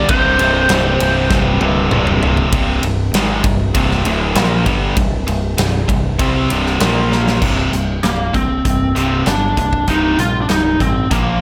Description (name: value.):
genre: hard rock.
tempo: 98 BPM.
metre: 4/4.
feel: straight.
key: C minor from 7.4 s.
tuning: A4 = 440 Hz.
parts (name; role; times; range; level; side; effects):
lead guitar through a small cranked amp; melody; 0.0-2.2, 8.0-11.4 s; Bb3 to C5; -20 LUFS; equal; overdrive, slapback echo.
overdriven semi-hollow guitar; riff; 0.0-11.4 s; C2 to C4; -23 LUFS; equal; spring reverb.
tight distorted guitar; riff; 0.0-11.4 s; C2 to C4; -23 LUFS; equal; distortion.
growling picked electric bass; bass; 0.0-11.4 s; C1 to C2; -22 LUFS; equal; overdrive.
huge arena drum kit; drums; 0.1-11.3 s; crash cymbal, hi-hat, kick drum, ride cymbal, snare drum, toms; -21 LUFS; equal; none.
room: small room ambience.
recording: none.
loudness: -15 LUFS.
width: mono.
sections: 0.0-2.5 A section; 2.5-7.4 B section; 7.4-11.4 C section.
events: drum fill 1.3-2.5, 7.1-7.4.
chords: 0.1 C5; 2.5 Cm; 6.8 Bb5; 7.4 C5.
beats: | 0.09 0.70 1.31 1.92 | 2.53 3.13 3.75 4.36 | 4.97 5.58 6.19 6.81 | 7.42 8.04 8.65 9.27 | 9.88 10.50 11.12.